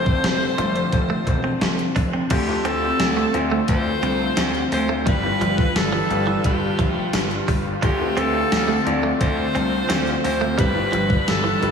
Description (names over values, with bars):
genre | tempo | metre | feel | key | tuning
1980s-style pop | 87 BPM | 4/4 | straight | unclear | A4 = 440 Hz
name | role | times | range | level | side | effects
edgy alto saxophone | melody | 0.0-11.7 s | G4 to C5 | -25 LUFS | equal | diffuse ambient delay
clear concert grand piano | accompaniment | 0.0-11.7 s | G3 to D5 | -28 LUFS | left 3 dB | wide subtle chorus
warm analog pad | sustained chords | 0.0-11.7 s | D3 to B4 | -27 LUFS | left 1 dB | chorus
direct-recorded clean electric guitar | riff | 0.0-11.6 s | E3 to D4 | -28 LUFS | right 4 dB | analog chorus
gritty slap bass | bass | 0.0-11.7 s | E1 to D2 | -26 LUFS | equal | overdrive
gated 80s digital drum machine | drums | 0.1-11.7 s | crash cymbal, hi-hat, kick drum, snare drum, tambourine | -24 LUFS | equal | gated reverb, gated reverb snare, overdrive
overdriven semi-hollow guitar | accompaniment | 2.3-11.7 s | D3 to G4 | -31 LUFS | equal | none
room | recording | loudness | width
wet lush hall reverb, RT60 2.5 s | dreamy mix soaked in reverb, small room reverb | -18 LUFS | side -6 dB against mid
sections
0.0-2.3 A section; 2.3-11.7 B section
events
none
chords
0.0 Dm7/F; 2.3 Dm7; 5.1 G7; 7.8 Dm7; 10.6 G7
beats
0.24 0.93 1.62 | 2.31 3.00 3.69 4.38 | 5.07 5.76 6.45 7.14 | 7.83 8.52 9.21 9.89 | 10.59 11.27